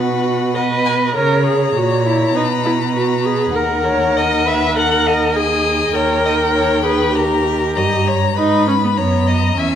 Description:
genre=quick classical-period movement for string quartet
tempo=100 BPM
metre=4/4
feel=straight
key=unclear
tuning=A4 = 438 Hz
part: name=warm violin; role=melody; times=0.0-9.8 s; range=F#5 to B5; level=-22 LUFS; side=left 11 dB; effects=none
part: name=warm violin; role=second line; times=0.0-9.8 s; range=A#4 to F#5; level=-20 LUFS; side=left 3 dB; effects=none
part: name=warm viola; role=accompaniment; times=0.0-9.8 s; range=B3 to B4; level=-18 LUFS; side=right 2 dB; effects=none
part: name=warm cello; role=bass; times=0.0-9.8 s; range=D#2 to C#3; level=-19 LUFS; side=right 3 dB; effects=none
room=wet recital hall reverb, RT60 1.6 s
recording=none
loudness=-14 LUFS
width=side -9 dB against mid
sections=0.0-9.8 A section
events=none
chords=0.0 B; 1.2 A#m7b5; 2.4 Bmaj7(no3); 3.6 D#m; 6.0 D#7; 8.4 G#m

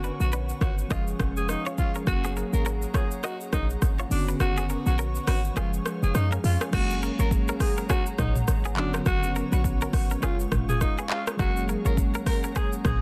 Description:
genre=afrobeats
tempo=103 BPM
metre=4/4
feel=swing 58% on 16ths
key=F# major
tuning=A4 = 439 Hz
part: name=mellow tine electric piano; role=accompaniment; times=0.0-13.0 s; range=D3 to G#4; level=-35 LUFS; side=equal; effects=phaser
part: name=glassy FM pad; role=sustained chords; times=0.0-13.0 s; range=G#4 to C#6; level=-42 LUFS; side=equal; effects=ensemble chorus, built-in reverb
part: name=direct-recorded clean electric guitar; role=riff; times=0.0-12.7 s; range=B3 to D#5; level=-39 LUFS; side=equal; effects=tremolo, delay
part: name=short 808-style bass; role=bass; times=0.0-13.0 s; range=E#1 to F#2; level=-29 LUFS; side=equal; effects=none
part: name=afro-pop drum kit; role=drums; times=0.0-13.0 s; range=crash cymbal, handclaps, hi-hat, kick drum, rim click, shaker, toms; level=-30 LUFS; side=equal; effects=soft clipping on snare
part: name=raspy alto saxophone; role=melody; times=0.2-13.0 s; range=D4 to A#4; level=-35 LUFS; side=equal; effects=delay
room=little or no reverb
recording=dense, heavily limited modern master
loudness=-26 LUFS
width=mono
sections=0.0-6.7 A section; 6.7-13.0 B section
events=kick muted 4.4-6.7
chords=0.0 Bmadd9/F#; 0.9 C#; 2.1 F#add9; 4.1 Bmadd9/F#; 5.6 C#; 6.7 F#add9; 8.8 Bmadd9/F#; 10.2 C#; 11.4 F#add9

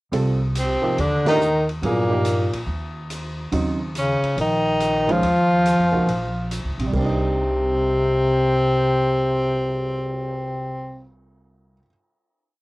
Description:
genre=modal jazz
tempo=141 BPM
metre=4/4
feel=swing 66% on 8ths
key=C minor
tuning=A4 = 440 Hz
part: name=warm upright piano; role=accompaniment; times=0.1-11.9 s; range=C3 to Bb4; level=-26 LUFS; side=right 3 dB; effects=cassette tape
part: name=upright bass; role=bass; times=0.1-11.8 s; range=Bb1 to G2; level=-27 LUFS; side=equal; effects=none
part: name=open jazz drum kit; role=drums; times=0.1-10.2 s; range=crash cymbal, cymbal swell, hi-hat, kick drum, ride cymbal, snare drum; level=-34 LUFS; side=equal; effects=cassette tape
part: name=clear tenor saxophone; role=melody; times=0.6-11.1 s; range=Bb3 to F4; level=-23 LUFS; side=equal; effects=cassette tape
part: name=warm bass clarinet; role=second line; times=0.6-11.1 s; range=Bb2 to F3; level=-22 LUFS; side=left 1 dB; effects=cassette tape
room=moderate booth ambience, RT60 0.2 s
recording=home recording on cassette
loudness=-18 LUFS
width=side -20 dB against mid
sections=0.1-6.9 A section; 6.9-10.3 final chord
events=band accent 1.2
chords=0.1 Cm7; 3.5 Eb7sus2; 6.9 Cm9

